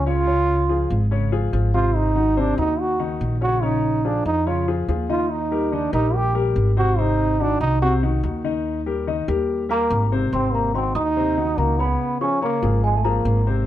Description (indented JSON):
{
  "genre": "jazz",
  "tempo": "143 BPM",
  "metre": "4/4",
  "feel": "straight",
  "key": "unclear",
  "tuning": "A4 = 440 Hz",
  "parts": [
    { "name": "warm trombone", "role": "melody", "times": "0.0-13.5 s", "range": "Ab3 to G4", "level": "-22 LUFS", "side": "right 2 dB", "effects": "plate reverb" },
    { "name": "upright bass", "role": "bass", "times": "0.0-13.6 s", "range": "Ab1 to F2", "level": "-22 LUFS", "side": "equal", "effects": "none" },
    { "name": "warm grand piano", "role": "accompaniment", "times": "0.1-13.6 s", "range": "C3 to Eb5", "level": "-25 LUFS", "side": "left 6 dB", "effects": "none" },
    { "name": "celesta", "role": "second line", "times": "9.7-13.5 s", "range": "Ab5 to Eb6", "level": "-26 LUFS", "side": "left 1 dB", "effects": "none" }
  ],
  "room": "moderate club reverb, RT60 0.5 s",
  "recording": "dark, warm production",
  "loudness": "-18 LUFS",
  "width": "side -12 dB against mid",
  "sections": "0.0-10.3 A section; 10.3-13.7 B section",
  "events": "trombone solo 0.0-10.3",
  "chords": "0.0 Db; 2.0 Ab9; 3.6 Bbm7; 5.3 Eb; 7.0 Ab7; 8.7 Eb; 10.3 Ab7; 12.0 Db"
}